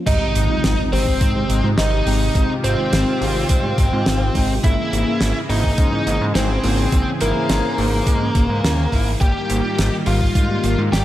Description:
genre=synthwave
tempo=105 BPM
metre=4/4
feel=straight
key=Ab major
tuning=A4 = 440 Hz
part: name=mellow FM electric piano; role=stabs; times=0.0-10.9 s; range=Ab2 to Bb4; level=-27 LUFS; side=right 1 dB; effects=chorus
part: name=bluesy overdriven lead guitar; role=melody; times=0.1-11.0 s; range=Bb3 to G4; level=-23 LUFS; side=equal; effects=distortion, tape echo, slapback echo
part: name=soft synth bell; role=second line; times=0.1-11.0 s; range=Bb4 to G5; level=-30 LUFS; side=right 2 dB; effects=chorus
part: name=brassy analog pad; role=sustained chords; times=0.1-11.0 s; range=C3 to C5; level=-26 LUFS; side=equal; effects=chorus, sidechain pumping
part: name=electric guitar at the edge of break-up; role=arpeggios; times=0.1-11.0 s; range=G3 to G4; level=-29 LUFS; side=left 3 dB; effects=lush chorus, tape echo
part: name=fat analog bass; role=bass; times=0.1-11.0 s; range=Ab1 to Ab2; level=-21 LUFS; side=equal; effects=sidechain pumping
part: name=damped 70s drum kit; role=drums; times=0.1-11.0 s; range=crash cymbal, hi-hat, snare drum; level=-24 LUFS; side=right 1 dB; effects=small room reverb
part: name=electronic kick drum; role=drums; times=0.1-10.5 s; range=none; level=-18 LUFS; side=equal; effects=small room reverb
part: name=impact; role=sound effects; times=0.1-2.4 s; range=none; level=-27 LUFS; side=equal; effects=none
room=light reverb, small room ambience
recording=none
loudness=-16 LUFS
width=side -13 dB against mid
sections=0.1-11.0 A section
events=impact 0.1-2.4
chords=0.1 Abmaj7; 4.6 Dbm6/Ab; 9.2 Eb/Ab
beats=| 0.07 0.64 1.21 1.78 | 2.35 2.92 3.50 4.07 | 4.64 5.21 5.78 6.35 | 6.92 7.50 8.07 8.64 | 9.21 9.78 10.35 10.92

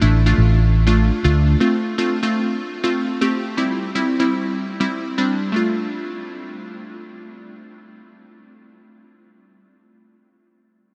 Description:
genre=dance-pop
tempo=122 BPM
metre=4/4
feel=straight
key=D minor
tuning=A4 = 440 Hz
part: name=glassy wavetable pluck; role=accompaniment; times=0.0-8.7 s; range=G3 to G4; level=-22 LUFS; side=equal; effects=chorus
part: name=vintage muted fingered electric bass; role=bass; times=0.0-1.5 s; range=A1 to D2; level=-16 LUFS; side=equal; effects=none
room=moderate huge ambient reverb, RT60 7.3 s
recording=dreamy mix soaked in reverb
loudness=-19 LUFS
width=mono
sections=0.0-5.5 A section; 5.5-9.5 B section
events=none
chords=0.0 Dm; 1.6 F; 3.6 C; 5.5 Dm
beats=0.13 0.62 1.11 | 1.61 2.10 2.59 3.08 | 3.57 4.07 4.56 5.05 | 5.54 6.03 6.52 7.02 | 7.51 8.00 8.49

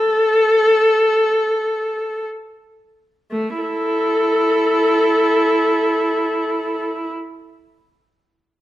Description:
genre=classical, free, expressive piece for unaccompanied viola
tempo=free time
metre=none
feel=none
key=unclear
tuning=A4 = 439 Hz
part: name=rich viola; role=solo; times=0.0-7.1 s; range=A3 to A4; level=-15 LUFS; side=equal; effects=none
room=light reverb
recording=close, detailed microphones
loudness=-15 LUFS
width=side -14 dB against mid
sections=0.0-3.3 A section; 3.3-8.6 B section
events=slowing down 0.0-3.3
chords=none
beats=free time

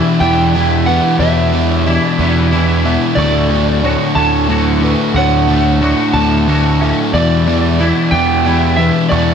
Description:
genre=post-rock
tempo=61 BPM (dotted quarters)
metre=6/8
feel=straight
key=unclear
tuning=A4 = 442 Hz
part: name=warm studio string section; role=sustained chords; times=0.0-9.3 s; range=D3 to G4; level=-25 LUFS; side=right 1 dB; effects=none
part: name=felt-muted upright piano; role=arpeggios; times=0.0-9.3 s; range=B4 to C#6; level=-27 LUFS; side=right 4 dB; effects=slapback echo, tape echo
part: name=twangy electric guitar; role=arpeggios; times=0.0-9.3 s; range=D2 to F#4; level=-23 LUFS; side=left 2 dB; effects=ensemble chorus, slapback echo, tape echo
part: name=fuzz guitar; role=riff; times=0.0-9.3 s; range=D2 to E3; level=-16 LUFS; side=left 8 dB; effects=distortion
part: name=overdriven semi-hollow guitar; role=riff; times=0.0-9.3 s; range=D2 to E3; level=-18 LUFS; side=right 9 dB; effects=none
part: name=electric slide guitar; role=melody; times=0.2-9.3 s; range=D5 to A5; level=-18 LUFS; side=right 2 dB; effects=tape echo
part: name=fuzz picked electric bass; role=bass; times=0.2-9.3 s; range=D2 to E2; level=-16 LUFS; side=right 1 dB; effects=overdrive
room=moderate scoring stage reverb, RT60 2.1 s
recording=big arena sound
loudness=-11 LUFS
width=side -7 dB against mid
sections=0.0-9.3 A section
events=none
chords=0.0 Em7; 3.2 Dmaj7; 7.1 Em7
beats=0.21 | 1.20 2.19 | 3.17 4.16 | 5.15 6.14 | 7.13 8.12 | 9.11

